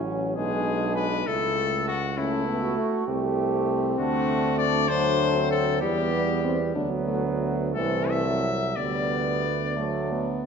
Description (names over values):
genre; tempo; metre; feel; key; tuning
classical, brass quintet; 58-68 BPM (dotted quarters); 6/8; rubato; unclear; A4 = 440 Hz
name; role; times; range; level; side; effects
mellow flugelhorn; second line; 0.0-10.4 s; A3 to G4; -31 LUFS; right 6 dB; none
clear French horn; accompaniment; 0.0-10.5 s; G3 to D4; -30 LUFS; left 4 dB; none
warm trombone; accompaniment; 0.0-10.4 s; E3 to A3; -30 LUFS; right 2 dB; none
clear tuba; bass; 0.0-10.4 s; A1 to E2; -29 LUFS; right 3 dB; none
clear trumpet; melody; 0.4-10.4 s; E4 to E5; -28 LUFS; left 7 dB; none
room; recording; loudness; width
wet scoring stage reverb, RT60 1.7 s; nothing above 7.8 kHz; -23 LUFS; side -6 dB against mid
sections
0.0-10.5 A section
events
none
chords
0.4 G#dim/B; 1.3 A/C#; 3.1 Am7/C; 4.0 D; 4.9 D7; 5.8 Em; 6.8 Bm/D; 7.7 Am/C; 8.8 G/D; 9.8 D